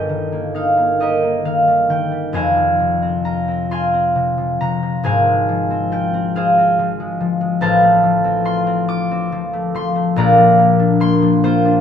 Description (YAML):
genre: classical, solo harp piece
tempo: 43-49 BPM (dotted quarters)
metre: 6/8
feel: rubato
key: Bb major from 7.6 s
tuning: A4 = 439 Hz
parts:
  - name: concert harp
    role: solo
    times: 0.0-11.8 s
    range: F1 to D6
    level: -14 LUFS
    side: left 1 dB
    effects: none
room: moderate recital hall reverb, RT60 1.4 s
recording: close, detailed microphones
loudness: -14 LUFS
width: side -8 dB against mid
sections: 0.0-11.8 A section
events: none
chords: 0.0 Eb/G; 2.3 Fm; 5.0 Fm/Ab; 7.6 F/A; 10.2 Bb